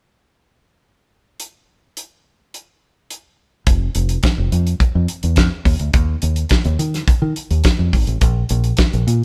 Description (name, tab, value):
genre	disco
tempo	106 BPM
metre	4/4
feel	straight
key	unclear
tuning	A4 = 441 Hz
part	damped 70s drum kit	drums	1.4-9.2 s	hi-hat, kick drum, snare drum	-19 LUFS	equal	none
part	fingered electric bass	bass	3.7-9.2 s	F1 to Eb3	-20 LUFS	equal	none
room	light reverb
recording	band playing live in one room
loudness	-17 LUFS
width	mono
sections	1.4-3.7 A section; 3.7-9.2 B section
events	none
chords	none